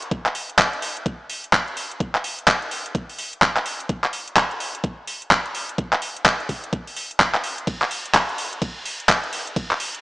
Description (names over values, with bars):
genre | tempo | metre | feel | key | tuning
house | 127 BPM | 4/4 | swing 62% on 16ths | none | none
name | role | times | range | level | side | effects
garage drum kit | drums | 0.0-10.0 s | handclaps, hi-hat, ride cymbal | -20 LUFS | equal | studio ambience
electronic kick drum | drums | 0.1-9.7 s | none | -25 LUFS | equal | studio ambience
room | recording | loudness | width
moderate lush hall reverb, RT60 2.1 s | small speaker sound | -20 LUFS | side -20 dB against mid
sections
0.0-10.0 A section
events
none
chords
none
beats
| 0.11 0.59 1.06 1.53 | 2.00 2.48 2.95 3.42 | 3.89 4.37 4.84 5.31 | 5.78 6.26 6.73 7.20 | 7.67 8.15 8.62 9.09 | 9.56